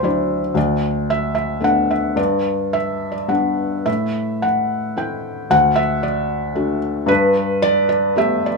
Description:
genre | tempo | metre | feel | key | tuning
classical, lyrical solo piano | 104-117 BPM | 3/4 | rubato | unclear | A4 = 440 Hz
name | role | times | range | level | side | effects
felt-muted upright piano | solo | 0.0-8.6 s | D2 to G5 | -16 LUFS | equal | none
room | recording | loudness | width
moderate small room reverb, RT60 0.6 s | small room ambience | -16 LUFS | side -3 dB against mid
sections
0.0-8.6 A section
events
none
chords
0.0 Dadd9; 0.6 Bm7/D; 2.2 G; 3.9 Am; 5.5 D; 7.1 Gadd9

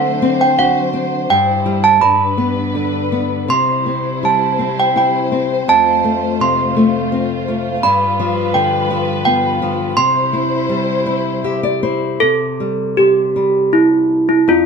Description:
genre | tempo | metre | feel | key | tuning
children's music, lullaby | 83 BPM | 3/4 | rubato | C major | A4 = 440 Hz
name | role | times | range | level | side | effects
desk bells | melody | 0.0-14.7 s | E4 to C6 | -14 LUFS | right 3 dB | none
flamenco guitar | accompaniment | 0.0-14.7 s | F2 to E5 | -19 LUFS | left 4 dB | none
dark studio string section | sustained chords | 0.0-12.2 s | F#3 to C5 | -21 LUFS | left 1 dB | none
room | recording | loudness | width
moderate studio reverb, RT60 0.8 s | band playing live in one room | -13 LUFS | side -5 dB against mid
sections
0.0-12.2 A section; 12.2-14.7 B section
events
nylon-string guitar fill 11.1-12.2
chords
0.0 D7; 1.3 C/G; 2.0 G; 3.5 C; 5.7 F; 7.8 G7; 10.0 C; 12.2 C5

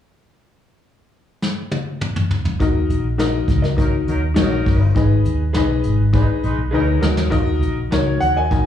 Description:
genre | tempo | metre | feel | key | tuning
uptempo 1960s-style soul | 102 BPM | 4/4 | straight | unclear | A4 = 440 Hz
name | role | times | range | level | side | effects
vintage brush drum kit | drums | 1.4-8.7 s | hi-hat, kick drum, snare drum, toms | -20 LUFS | equal | slapback echo
clear upright piano | accompaniment | 2.6-8.7 s | D#4 to D#5 | -21 LUFS | left 6 dB | slapback echo
vintage muted fingered electric bass | bass | 2.6-8.7 s | G1 to D#2 | -18 LUFS | equal | none
electric guitar through a small old amp | stabs | 3.2-8.5 s | F#4 to D#5 | -30 LUFS | right 5 dB | warbly pitch drift, slapback echo
warm horn section | second line | 3.8-7.3 s | F#3 to B4 | -28 LUFS | right 1 dB | slapback echo
clear baby grand piano | melody | 8.2-8.7 s | F#5 to G#5 | -18 LUFS | equal | slapback echo
room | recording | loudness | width
small room ambience | live gig heard through the venue's PA, club reverb, studio ambience | -16 LUFS | side -10 dB against mid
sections
0.2-2.6 A section; 2.6-7.3 B section; 7.3-8.7 C section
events
drum fill 1.4-2.6, 6.7-7.3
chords
0.2 N.C.; 2.6 D#m; 5.0 G#m; 7.0 D#m

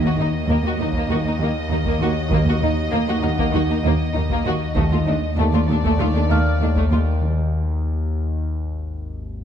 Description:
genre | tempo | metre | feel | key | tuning
cinematic, suspense film score | 98 BPM | 4/4 | straight | unclear | A4 = 440 Hz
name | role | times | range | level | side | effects
dark chamber violin section | melody | 0.0-7.2 s | D5 to Eb5 | -30 LUFS | left 1 dB | none
warm studio viola section | accompaniment | 0.0-7.0 s | A3 to Bb3 | -27 LUFS | right 1 dB | none
warm symphonic cello section | riff | 0.0-7.1 s | Eb3 to Eb4 | -26 LUFS | right 1 dB | none
rich symphonic cello section | bass | 0.0-7.0 s | Eb2 | -25 LUFS | right 2 dB | none
analog drone | drone | 0.0-9.4 s | Ab1 to Eb2 | -23 LUFS | left 1 dB | chorus
timpani | percussion | 0.0-0.7, 7.2-8.1 s | Eb3 | -28 LUFS | left 1 dB | none
music box | texture | 0.0-7.2 s | F5 to G#6 | -31 LUFS | equal | none
dark symphonic violin section | second line | 0.1-7.0 s | A3 to Gb4 | -28 LUFS | left 3 dB | none
dark symphonic double bass section | bass | 0.2-7.0 s | Eb2 | -27 LUFS | right 2 dB | none
solo taiko drums | drums | 0.9-7.2 s | none | -28 LUFS | equal | none
room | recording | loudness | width
moderate scoring stage reverb, RT60 2.2 s | dark, warm production | -18 LUFS | side -9 dB against mid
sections
0.0-9.4 A section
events
break 7.2-9.4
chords
0.0 Ebm; 4.8 Dm/Eb; 7.2 N.C.

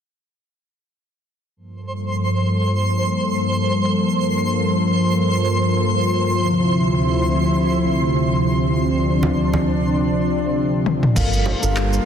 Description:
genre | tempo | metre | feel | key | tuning
sunset chillout | 100 BPM | 4/4 | swing 56% on 16ths | G minor | A4 = 443 Hz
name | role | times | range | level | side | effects
lush unison pad | sustained chords | 1.6-12.1 s | D2 to A5 | -18 LUFS | equal | chorus
twinkling granular texture | texture | 1.9-12.1 s | C5 to C6 | -24 LUFS | right 1 dB | built-in reverb
congas | percussion | 9.2-11.6 s | none | -24 LUFS | right 3 dB | none
deep house drum kit | drums | 10.9-12.0 s | crash cymbal, handclaps, shaker, toms | -21 LUFS | left 2 dB | none
mellow tine electric piano | accompaniment | 11.1-12.1 s | G3 to F5 | -24 LUFS | equal | medium stereo tremolo, auto-pan
round analog bass | bass | 11.2-12.0 s | G1 | -20 LUFS | equal | none
electronic kick drum | drums | 11.2-11.3 s | none | -23 LUFS | equal | none
room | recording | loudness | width
moderate lush hall reverb, RT60 2.1 s | dense, heavily limited modern master | -16 LUFS | side -8 dB against mid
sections
1.6-11.2 A section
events
filter sweep on analog synth pad 1.6-11.2; drum fill 10.9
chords
1.6 Gm9; 6.4 Dm9; 11.2 Gm9

